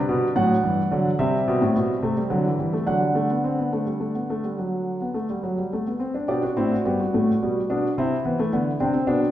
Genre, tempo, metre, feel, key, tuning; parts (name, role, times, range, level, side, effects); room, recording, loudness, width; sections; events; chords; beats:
classical, baroque-style 4-part fugue for grand piano; 72 BPM (dotted quarters); 12/8; straight; G major; A4 = 439 Hz
warm concert grand piano; solo; 0.0-9.3 s; G2 to G5; -21 LUFS; equal
wet recital hall reverb, RT60 1.4 s; heard from further back in the room; -21 LUFS; side -12 dB against mid
0.0-6.3 A section; 6.3-9.3 B section
0.0 G; 1.2 C; 2.9 D; 6.3 G; 8.0 C
0.36 1.19 2.02 | 2.87 3.72 4.58 5.43 | 6.29 7.13 7.96 8.79